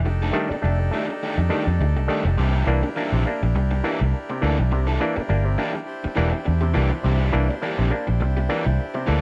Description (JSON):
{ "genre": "funk", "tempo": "103 BPM", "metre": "4/4", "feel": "swing 56% on 16ths", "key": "unclear", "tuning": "A4 = 439 Hz", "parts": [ { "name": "accordion", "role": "sustained chords", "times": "0.0-9.2 s", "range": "D4 to C5", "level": "-34 LUFS", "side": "equal", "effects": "none" }, { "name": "vintage muted fingered electric bass", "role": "bass", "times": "0.0-9.2 s", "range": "E1 to F2", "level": "-23 LUFS", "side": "equal", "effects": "none" }, { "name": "raw garage guitar", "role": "accompaniment", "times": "0.1-9.2 s", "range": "Eb3 to A4", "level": "-32 LUFS", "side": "equal", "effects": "overdrive" }, { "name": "auto-wah clav", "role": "stabs", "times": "0.3-9.2 s", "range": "C3 to D4", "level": "-28 LUFS", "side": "equal", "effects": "none" } ], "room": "light reverb", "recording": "dark, warm production", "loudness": "-22 LUFS", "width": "mono", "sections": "0.0-9.2 A section", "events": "none", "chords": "0.1 F13; 2.4 C9", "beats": "| 0.05 0.63 1.22 1.80 | 2.38 2.96 3.54 4.13 | 4.71 5.29 5.87 6.46 | 7.04 7.62 8.20 8.79" }